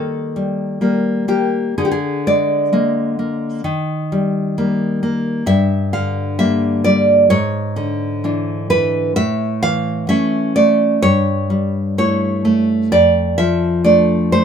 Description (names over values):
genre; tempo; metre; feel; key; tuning
romantic piece for solo classical guitar; 65 BPM; 4/4; rubato; unclear; A4 = 440 Hz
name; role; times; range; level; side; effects
nylon-string guitar; solo; 0.0-14.4 s; F2 to F5; -14 LUFS; equal; none
room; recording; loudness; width
moderate studio reverb, RT60 0.6 s; minimal, uncompressed stereo recording; -14 LUFS; side -7 dB against mid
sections
0.0-14.4 A section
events
none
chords
0.0 Eb; 1.8 Bb7/D; 3.6 Eb; 5.5 Gm; 7.3 E7/G#; 9.2 A; 11.0 A7/G; 12.9 Dm/F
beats
0.82 | 1.77 2.72 3.64 4.57 | 5.47 6.38 7.30 8.23 | 9.16 10.08 11.02 11.97 | 12.92 13.85